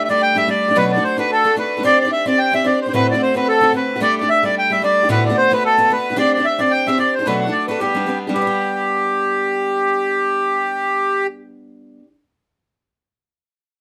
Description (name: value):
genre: celtic folk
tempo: 221 BPM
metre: 4/4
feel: swing 55% on 8ths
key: G major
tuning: A4 = 442 Hz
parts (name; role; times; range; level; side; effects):
- accordion; melody; 0.0-11.3 s; G4 to G5; -18 LUFS; equal; none
- picked steel-string acoustic guitar; accompaniment; 0.0-12.1 s; D2 to C5; -24 LUFS; equal; none
room: moderate studio ambience, RT60 0.5 s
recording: none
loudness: -17 LUFS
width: mono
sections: 0.0-8.3 A section; 8.3-10.5 B section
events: none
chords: 0.0 Gsus2; 0.8 Bm7; 1.8 Csus2; 2.9 D7; 4.0 Gsus2; 5.1 D6; 6.2 Csus2; 7.3 Bm7; 7.8 G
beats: 0.21 0.48 | 0.75 1.02 1.29 1.57 | 1.84 2.11 2.38 2.65 | 2.92 3.19 3.46 3.74 | 4.01 4.28 4.55 4.82 | 5.09 5.36 5.63 5.91 | 6.18 6.45 6.72 6.99 | 7.26 7.53 7.80 8.07 | 8.35 8.62 8.89 9.16 | 9.43 9.70 9.97 10.24